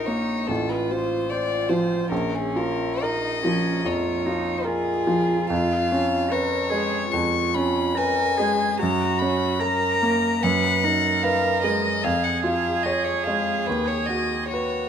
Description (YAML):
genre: classical, slow romantic movement for piano quartet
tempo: 73 BPM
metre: 4/4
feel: uneven beats, rubato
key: unclear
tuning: A4 = 436 Hz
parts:
  - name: rich violin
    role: melody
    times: 0.0-14.9 s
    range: Ab4 to C#6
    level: -25 LUFS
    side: left 7 dB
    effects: none
  - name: warm cello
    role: second line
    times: 0.0-14.9 s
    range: Db4 to B4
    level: -27 LUFS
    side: right 6 dB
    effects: none
  - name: clear grand piano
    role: accompaniment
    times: 0.0-14.9 s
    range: A1 to C#5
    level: -24 LUFS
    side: right 1 dB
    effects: none
room: light reverb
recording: close, detailed microphones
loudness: -20 LUFS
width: side -8 dB against mid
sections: 0.0-14.9 A section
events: none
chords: 0.5 F/A; 2.1 Bbm; 5.5 C#7/E#; 8.8 F#; 10.4 G#m7/F#; 12.0 C#/E#; 13.7 B/D#